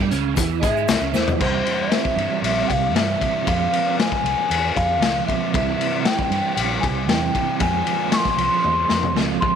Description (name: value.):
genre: psychedelic rock.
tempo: 116 BPM.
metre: 4/4.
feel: straight.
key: unclear.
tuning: A4 = 440 Hz.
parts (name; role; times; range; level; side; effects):
overdriven semi-hollow guitar; riff; 0.0-9.6 s; C3 to Ab4; -24 LUFS; right 13 dB; rotary speaker.
fingered electric bass; bass; 0.0-9.4 s; Bb1 to Ab2; -26 LUFS; equal; none.
raw garage drum kit; drums; 0.1-9.5 s; crash cymbal, hi-hat, kick drum, ride cymbal, snare drum, toms; -22 LUFS; left 5 dB; none.
egg shaker; percussion; 0.1-1.3 s; none; -39 LUFS; left 18 dB; none.
mellow hollow bansuri; melody; 0.6-9.6 s; C5 to Db6; -22 LUFS; left 2 dB; slapback echo.
room: light reverb, small room ambience.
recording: 1960s-style stereo with parts hard left and right.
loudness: -18 LUFS.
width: side -8 dB against mid.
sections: 0.0-1.4 A section; 1.4-9.6 B section.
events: drum fill 1.1, 8.6-9.6.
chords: 0.0 C; 3.5 Fm; 5.5 C; 7.6 Fm.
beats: 0.36 0.88 | 1.40 1.91 2.43 2.94 | 3.46 3.98 4.50 5.01 | 5.53 6.05 6.57 7.08 | 7.60 8.12 8.64 9.16.